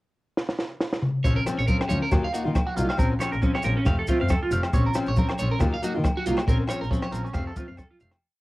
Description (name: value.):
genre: highlife guitar band.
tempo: 137 BPM.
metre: 4/4.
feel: swing 55% on 16ths.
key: Bb harmonic minor.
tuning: A4 = 438 Hz.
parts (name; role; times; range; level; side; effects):
compact cocktail drum kit; drums; 0.4-8.2 s; hi-hat, kick drum, rim click, snare drum, toms; -25 LUFS; equal; none.
picked steel-string acoustic guitar; accompaniment; 1.2-8.2 s; F3 to F4; -30 LUFS; left 3 dB; cassette tape.
electric guitar at the edge of break-up; arpeggios; 1.2-8.1 s; Db4 to F5; -29 LUFS; right 3 dB; phaser, cassette tape, tape echo.
warm double bass; bass; 1.2-8.1 s; F1 to Eb3; -27 LUFS; equal; none.
maracas; percussion; 1.2-8.2 s; none; -45 LUFS; left 3 dB; none.
congas; percussion; 1.3-8.1 s; none; -32 LUFS; equal; none.
agogo bells; percussion; 1.5-8.2 s; none; -37 LUFS; left 1 dB; none.
room: light reverb.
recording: home recording on cassette.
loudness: -22 LUFS.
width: side -19 dB against mid.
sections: 0.0-1.2 pickup bar; 1.2-8.2 groove.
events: drum fill 0.4-1.2; fade-out 6.5-8.2.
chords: 0.0 N.C.; 1.2 Bbmadd9; 2.1 Ebmadd9; 3.0 Bbmadd9; 3.9 F; 4.7 Bbmadd9; 5.6 Ebmadd9; 6.5 Bbmadd9; 7.4 F.